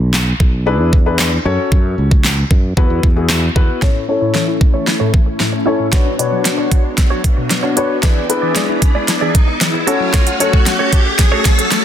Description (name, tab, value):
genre	dance-pop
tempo	114 BPM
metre	4/4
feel	straight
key	A major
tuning	A4 = 441 Hz
part	sustaining fretless electric bass	bass	0.0-3.7 s	B1 to F#2	-16 LUFS	equal	sidechain pumping
part	pop drum kit	drums	0.1-11.8 s	handclaps, hi-hat, kick drum, snare drum	-14 LUFS	equal	none
part	dark baby grand piano	accompaniment	0.7-11.1 s	B3 to C#5	-18 LUFS	left 4 dB	sidechain pumping, low-pass filter
part	string machine, violins	sustained chords	3.8-11.8 s	A3 to D5	-22 LUFS	equal	ensemble chorus, sidechain pumping, low-pass filter
part	hollow square pluck	arpeggios	3.8-11.8 s	A2 to F#5	-23 LUFS	left 6 dB	chorus, sidechain pumping, low-pass filter, ping-pong delay
part	direct-recorded clean electric guitar	riff	3.8-11.8 s	D4 to D5	-23 LUFS	right 5 dB	analog chorus, low-pass filter
part	riser	sound effects	6.1-11.8 s	none	-22 LUFS	equal	none
room	light reverb, digital ambience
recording	dense, heavily limited modern master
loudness	-12 LUFS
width	side -10 dB against mid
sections	0.0-3.8 A section; 3.8-11.8 B section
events	build-up 3.8-11.8; drum fill 3.8-11.8; filter sweep 3.8-11.8; riser 6.1-11.8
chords	0.0 E7; 1.5 F#m; 2.8 Esus2; 3.8 A; 5.9 Bmadd9; 8.0 E7; 9.9 F#m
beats	0.14 0.67 1.19 | 1.72 2.24 2.77 3.30 | 3.82 4.35 4.88 5.40 | 5.93 6.45 6.98 7.51 | 8.03 8.56 9.09 9.61 | 10.14 10.66 11.19 11.72